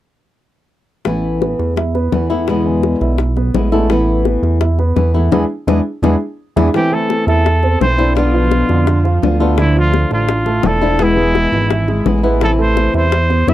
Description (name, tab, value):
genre	latin, Cuban son and guajira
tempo	169 BPM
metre	4/4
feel	straight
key	A minor from 6.7 s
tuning	A4 = 440 Hz
part	flamenco guitar	accompaniment	1.0-13.5 s	B2 to F4	-18 LUFS	left 4 dB	none
part	warm grand piano	arpeggios	1.1-13.5 s	D3 to E5	-19 LUFS	right 3 dB	none
part	chorused synth bass	bass	1.1-13.5 s	E1 to F2	-16 LUFS	right 1 dB	none
part	bongos	percussion	1.1-13.5 s	none	-20 LUFS	left 9 dB	none
part	breathy trumpet	melody	6.8-13.5 s	E4 to E5	-18 LUFS	right 1 dB	tape echo
room	little or no reverb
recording	dry, close 1970s-style studio recording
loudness	-12 LUFS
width	side -13 dB against mid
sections	1.1-6.7 A section; 6.7-13.5 B section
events	band accent 5.3-6.7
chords	1.1 Asus2; 2.5 E7; 3.9 Asus2; 5.3 E7; 6.7 Am; 8.2 Bdim; 9.6 Dmadd9; 11.0 E; 12.4 Amadd9